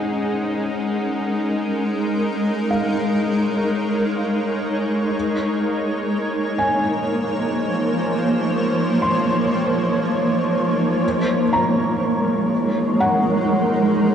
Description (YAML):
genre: ambient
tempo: free time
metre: none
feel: none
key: Ab mixolydian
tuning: A4 = 440 Hz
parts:
  - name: shimmering ambient pad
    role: sustained chords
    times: 0.0-14.1 s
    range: F3 to Eb5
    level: -19 LUFS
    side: right 1 dB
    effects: chorus, built-in reverb
  - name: felt-muted upright piano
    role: arpeggios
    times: 0.0-14.1 s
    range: C5 to C6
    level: -27 LUFS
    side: left 1 dB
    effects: diffuse ambient delay
  - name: bowed-like drone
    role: drone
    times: 0.0-11.1 s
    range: Ab3 to Eb4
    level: -26 LUFS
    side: left 1 dB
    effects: built-in reverb
room: wet cathedral reverb, RT60 6.4 s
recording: in a vast, echoing space, cassette tape, nothing above 10.9 kHz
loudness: -18 LUFS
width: side -8 dB against mid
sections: 0.0-11.0 A section; 11.0-14.1 B section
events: none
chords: 0.0 Ab7sus4; 5.1 Bbm9; 11.0 Ab7sus4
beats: free time